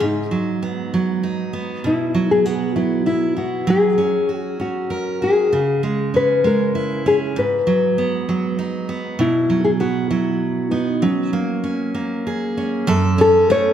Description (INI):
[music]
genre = pop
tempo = 65 BPM (dotted quarters)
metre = 6/8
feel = straight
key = unclear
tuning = A4 = 440 Hz
[part]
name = nylon-string guitar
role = melody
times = 0.0-13.7 s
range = C#4 to C#5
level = -18 LUFS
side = left 3 dB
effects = tape echo
[part]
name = picked steel-string acoustic guitar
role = accompaniment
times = 0.0-13.7 s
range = F#2 to A#4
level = -20 LUFS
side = right 4 dB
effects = none
[sound]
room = moderate recital hall reverb, RT60 1.6 s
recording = none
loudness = -17 LUFS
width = side -9 dB against mid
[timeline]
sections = 0.0-12.9 A section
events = none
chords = 0.0 G#m7; 1.8 Bsus4; 3.7 F#add9; 5.5 C#m; 7.4 G#m7; 9.2 Bsus4; 11.0 F#add9; 12.9 F#m